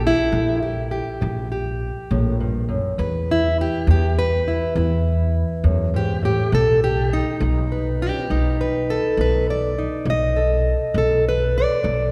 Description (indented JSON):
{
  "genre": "acoustic country blues, solo or duo",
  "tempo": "68 BPM (dotted quarters)",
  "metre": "12/8",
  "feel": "straight",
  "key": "unclear",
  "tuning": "A4 = 440 Hz",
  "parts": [
    { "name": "fingerpicked plugged-in steel-string acoustic guitar", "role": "melody", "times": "0.0-12.1 s", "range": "E2 to D#5", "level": "-23 LUFS", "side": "equal", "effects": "none" },
    { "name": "upright bass", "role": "bass", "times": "0.0-12.1 s", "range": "Bb1 to E2", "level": "-24 LUFS", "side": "equal", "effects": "none" }
  ],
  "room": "wet church reverb, RT60 2.8 s",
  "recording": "recorded in a church or concert hall",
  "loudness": "-21 LUFS",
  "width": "mono",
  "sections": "0.0-12.1 A section",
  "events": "none",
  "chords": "0.0 Gm69/Bb; 3.0 E5; 6.5 B7"
}